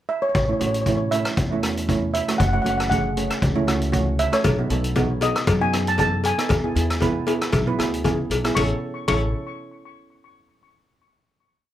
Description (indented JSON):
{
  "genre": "calypso",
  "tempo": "117 BPM",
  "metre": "4/4",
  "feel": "swing 54% on 16ths",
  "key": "A major",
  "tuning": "A4 = 440 Hz",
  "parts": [
    { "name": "steel pan", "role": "melody", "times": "0.1-9.3 s", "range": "C#5 to C#6", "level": "-25 LUFS", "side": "equal", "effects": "plate reverb, tape echo" },
    { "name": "upright bass", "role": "bass", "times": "0.3-9.3 s", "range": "F#1 to F#2", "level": "-25 LUFS", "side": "left 1 dB", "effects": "none" },
    { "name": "street-band drum kit", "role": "drums", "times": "0.3-9.2 s", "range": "hi-hat, kick drum, ride cymbal, rim click", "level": "-25 LUFS", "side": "left 1 dB", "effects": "none" },
    { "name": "steel pan", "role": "accompaniment", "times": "0.5-9.3 s", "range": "A3 to G#5", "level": "-25 LUFS", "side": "right 3 dB", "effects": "none" },
    { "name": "cowbell", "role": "percussion", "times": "4.4-9.3 s", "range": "none", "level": "-27 LUFS", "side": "left 4 dB", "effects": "none" }
  ],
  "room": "light reverb",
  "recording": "none",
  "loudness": "-19 LUFS",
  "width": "side -12 dB against mid",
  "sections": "0.0-0.3 pickup bar; 0.3-8.6 verse; 8.6-10.6 final chord",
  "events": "steel pan fill 7.0-8.6",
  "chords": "0.3 A; 2.4 F#madd9; 4.4 B7; 6.5 E; 8.6 A"
}